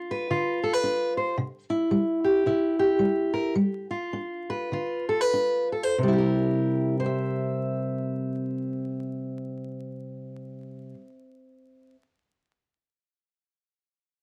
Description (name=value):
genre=blues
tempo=93-113 BPM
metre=4/4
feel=swing 60% on 8ths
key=C mixolydian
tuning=A4 = 440 Hz
part: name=fingerpicked steel-string acoustic guitar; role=solo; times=0.0-12.0 s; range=C3 to E5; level=-27 LUFS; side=equal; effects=cassette tape
room=moderate studio reverb, RT60 0.5 s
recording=home recording on cassette, vinyl crackle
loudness=-26 LUFS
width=mono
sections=0.0-6.0 A section; 6.0-11.1 B section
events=slowing down 1.4-6.0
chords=0.0 G7 (rootless); 1.4 C; 3.6 G7; 6.0 C7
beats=0.32 0.85 | 1.38 1.91 2.45 3.00 | 3.56 4.13 4.72 5.33 | 5.96 6.61 7.26 7.90 | 8.55 9.20 9.85 10.49